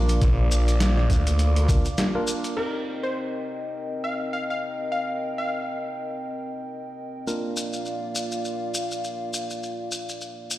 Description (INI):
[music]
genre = glitch hop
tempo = 102 BPM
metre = 4/4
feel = swing 58% on 16ths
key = C minor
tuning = A4 = 440 Hz
[part]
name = dark analog pad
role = sustained chords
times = 0.0-10.6 s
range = Bb3 to D6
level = -32 LUFS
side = equal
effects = chorus, vintage 12-bit sampler grit, sidechain pumping
[part]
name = tine electric piano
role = stabs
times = 0.0-10.6 s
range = Bb3 to Bb4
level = -33 LUFS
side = right 1 dB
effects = sidechain pumping, low-pass filter, dub echo
[part]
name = boom bap sampler-style drum kit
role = drums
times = 0.1-2.7 s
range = crash cymbal, hi-hat, snare drum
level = -30 LUFS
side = equal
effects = low-pass filter on hats, low-pass filter on snare, low-pass filter on cymbals
[part]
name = maracas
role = percussion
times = 0.1-2.5, 7.3-10.6 s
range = none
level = -33 LUFS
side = left 2 dB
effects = none
[part]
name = phased detuned saw bass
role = bass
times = 0.2-1.7 s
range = Bb1 to D2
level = -20 LUFS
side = equal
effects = phaser, overdrive
[part]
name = electronic kick drum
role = drums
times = 0.2-1.8 s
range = none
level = -21 LUFS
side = equal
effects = none
[part]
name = plucky unison lead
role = melody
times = 2.6-5.8 s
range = Bb4 to F5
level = -30 LUFS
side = left 1 dB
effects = dub echo
[sound]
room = light reverb, digital ambience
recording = played on a big sound system in a bare room, large studio reverb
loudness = -24 LUFS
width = side -15 dB against mid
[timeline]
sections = 0.0-2.6 A section; 2.6-10.6 B section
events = break 2.0-2.6; filter sweep on tine electric piano 2.6-10.6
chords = 0.0 Bb; 2.6 Cm7; 7.3 Bb